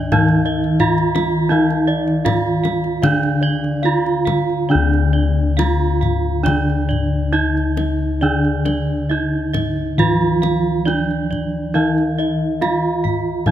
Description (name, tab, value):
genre	Javanese gamelan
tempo	68-91 BPM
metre	4/4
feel	straight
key	unclear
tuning	A4 = 440 Hz
part	gamelan-type bronze metallophone	melody	0.0-13.5 s	D4 to F4	-20 LUFS	right 3 dB	none
part	gamelan-type bronze metallophone	accompaniment	0.0-13.5 s	D3 to F3	-22 LUFS	equal	none
part	gamelan-type bronze metallophone	arpeggios	0.0-13.5 s	D5 to F5	-28 LUFS	right 5 dB	none
part	gamelan-type bossed gongs	arpeggios	0.1-4.3, 11.7-13.5 s	D5 to F5	-28 LUFS	left 4 dB	none
part	gamelan-type bossed gongs	bass	0.1-13.5 s	D2 to Eb4+35c	-20 LUFS	left 2 dB	none
part	kendang	percussion	0.1-13.5 s	none	-24 LUFS	left 2 dB	none
room	light reverb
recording	close, detailed microphones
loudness	-15 LUFS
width	side -11 dB against mid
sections	0.0-4.7 A section; 4.7-13.5 B section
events	none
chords	none